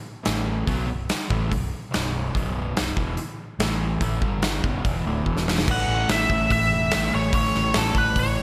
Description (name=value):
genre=hard rock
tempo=144 BPM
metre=4/4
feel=straight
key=unclear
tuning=A4 = 440 Hz
part: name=crunchy overdriven guitar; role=riff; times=0.2-8.4 s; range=B1 to B3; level=-30 LUFS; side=equal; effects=slapback echo
part: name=fingered electric bass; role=bass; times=0.3-8.4 s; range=B0 to B1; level=-31 LUFS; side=equal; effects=none
part: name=big rock drum kit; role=drums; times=0.3-8.3 s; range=crash cymbal, hi-hat, kick drum, snare drum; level=-28 LUFS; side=equal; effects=none
part: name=nasal lead guitar with a parked wah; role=melody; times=5.7-8.4 s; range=A4 to F#5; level=-25 LUFS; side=equal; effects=overdrive, analog delay
room=light reverb, studio reverb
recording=none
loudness=-23 LUFS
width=mono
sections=0.0-5.7 A section; 5.7-8.4 B section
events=drum fill 5.3-5.7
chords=0.3 A5; 0.7 B5; 3.6 A5; 4.2 G5; 4.6 Bm; 5.3 E5; 5.7 A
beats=0.26 | 0.68 1.10 1.52 1.93 | 2.35 2.77 3.19 3.60 | 4.02 4.43 4.85 5.27 | 5.68 6.10 6.51 6.92 | 7.34 7.75 8.17